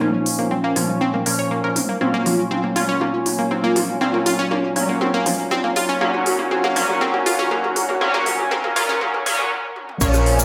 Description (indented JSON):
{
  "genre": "melodic techno",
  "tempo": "120 BPM",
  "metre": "4/4",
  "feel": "straight",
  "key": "unclear",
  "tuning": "A4 = 440 Hz",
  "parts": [
    { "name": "unison lead", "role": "melody", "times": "0.0-10.4 s", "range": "Db4 to Bb4", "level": "-28 LUFS", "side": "equal", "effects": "ensemble chorus, sidechain pumping, dub echo" },
    { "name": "dark analog pad", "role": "sustained chords", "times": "0.0-10.4 s", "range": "Gb3 to Bb5", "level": "-33 LUFS", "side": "equal", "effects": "chorus, phaser, sidechain pumping" },
    { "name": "analog pluck", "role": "arpeggios", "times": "0.0-10.4 s", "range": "F3 to Db5", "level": "-25 LUFS", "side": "equal", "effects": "chorus, sidechain pumping, tape echo" },
    { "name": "sync-sweep polysynth", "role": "stabs", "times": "0.0-10.4 s", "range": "Bb2 to Db4", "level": "-25 LUFS", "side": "equal", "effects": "chorus, sidechain pumping, tape echo" },
    { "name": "techno drum kit", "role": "drums", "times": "0.0-10.4 s", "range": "crash cymbal, hi-hat, rim click, toms", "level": "-27 LUFS", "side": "equal", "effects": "none" },
    { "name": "glassy wavetable pluck", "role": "second line", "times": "10.0-10.4 s", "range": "Db5", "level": "-27 LUFS", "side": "equal", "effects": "chorus, sidechain pumping" },
    { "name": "gritty driven synth bass", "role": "bass", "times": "10.0-10.4 s", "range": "Bb1", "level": "-21 LUFS", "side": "equal", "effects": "distortion, sidechain pumping" },
    { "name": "electronic kick drum", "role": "drums", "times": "10.0-10.1 s", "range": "none", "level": "-24 LUFS", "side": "equal", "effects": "none" },
    { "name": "egg shaker", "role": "percussion", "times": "10.0-10.4 s", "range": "none", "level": "-26 LUFS", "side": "equal", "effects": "none" }
  ],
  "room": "wet digital room reverb, RT60 1.1 s",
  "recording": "high-pass filter",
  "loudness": "-20 LUFS",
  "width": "mono",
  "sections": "0.0-10.0 A section",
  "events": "build-up 0.0-10.0; drum fill 0.0-9.5, 9.8; filter sweep on analog synth lead 0.0-10.0; filter sweep on analog polysynth 0.0-10.0; filter sweep on analog synth pad 0.0-10.0; break 9.5-10.0",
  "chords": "0.0 Bbm; 2.0 Gb"
}